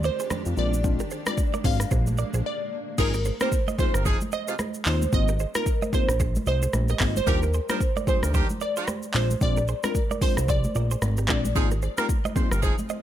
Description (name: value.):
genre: afrobeats.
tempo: 112 BPM.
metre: 4/4.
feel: swing 58% on 16ths.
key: unclear.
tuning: A4 = 440 Hz.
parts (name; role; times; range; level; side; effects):
granular cloud pad; sustained chords; 0.0-3.0, 12.8-13.0 s; Eb3 to G4; -39 LUFS; equal; built-in reverb.
direct-recorded clean electric guitar; riff; 0.0-13.0 s; F4 to Eb5; -35 LUFS; right 10 dB; spring reverb, ping-pong delay.
fat analog bass; bass; 0.0-12.7 s; G1 to F2; -25 LUFS; equal; none.
afro-pop drum kit; drums; 0.0-13.0 s; crash cymbal, handclaps, hi-hat, kick drum, rim click, shaker; -26 LUFS; equal; none.
glassy wavetable pluck; melody; 0.1-11.4 s; Bb4 to F5; -30 LUFS; right 2 dB; chorus, ping-pong delay.
congas; percussion; 0.3-12.9 s; none; -35 LUFS; right 3 dB; none.
tine electric piano; accompaniment; 0.6-12.5 s; G3 to F4; -32 LUFS; left 8 dB; analog chorus.
warm horn section; second line; 3.0-12.7 s; C3 to C5; -31 LUFS; right 1 dB; none.
room: digital ambience.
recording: none.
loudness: -22 LUFS.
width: side -11 dB against mid.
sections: 0.0-3.0 A section; 3.0-13.0 B section.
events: break 2.4-3.0.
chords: 0.0 Ebmaj7; 0.6 Bb7; 3.0 Ab6; 7.3 Ebmaj7; 9.1 Bb7; 11.6 Ab6.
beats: 0.31 | 0.84 1.38 1.91 2.45 | 2.98 3.52 4.06 4.59 | 5.13 5.66 6.20 6.73 | 7.27 7.81 8.34 8.88 | 9.41 9.95 10.48 11.02 | 11.56 12.09 12.63.